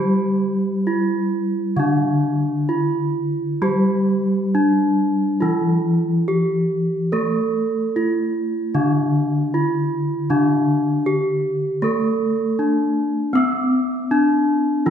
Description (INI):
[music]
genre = gamelan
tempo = 65-79 BPM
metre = 4/4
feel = straight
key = D slendro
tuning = A4 = 440 Hz
[part]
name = gamelan-type bronze metallophone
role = melody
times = 0.0-14.9 s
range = C4-40c to A4+20c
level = -20 LUFS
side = equal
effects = none
[part]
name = gamelan-type bronze metallophone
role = accompaniment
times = 0.0-14.9 s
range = D3 to C4-40c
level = -21 LUFS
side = equal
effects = none
[sound]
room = wet recital hall reverb, RT60 1.7 s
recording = recorded in a church or concert hall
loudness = -17 LUFS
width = side -8 dB against mid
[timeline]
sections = 0.0-10.3 A section; 10.3-14.9 B section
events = none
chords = none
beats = 0.83 1.76 2.68 | 3.61 4.52 5.41 6.28 | 7.13 7.95 8.76 9.54 | 10.31 11.07 11.83 12.59 | 13.35 14.11 14.87